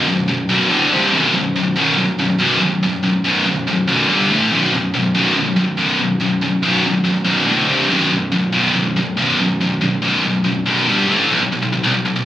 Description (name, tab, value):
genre	metal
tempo	142 BPM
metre	4/4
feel	straight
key	B phrygian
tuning	A4 = 439 Hz
part	scooped high-gain guitar	solo	0.0-12.2 s	B1 to A3	-14 LUFS	equal	distortion
room	moderate studio reverb, RT60 0.8 s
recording	recorded on a phone in the room, club reverb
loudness	-14 LUFS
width	side -12 dB against mid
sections	0.0-11.3 A section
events	none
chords	0.0 B5; 0.7 D5; 0.9 C5; 1.1 B5; 4.1 G5; 4.3 A5; 4.5 B5; 7.5 D5; 7.7 C5; 7.9 B5; 10.9 G5; 11.1 A5; 11.3 N.C.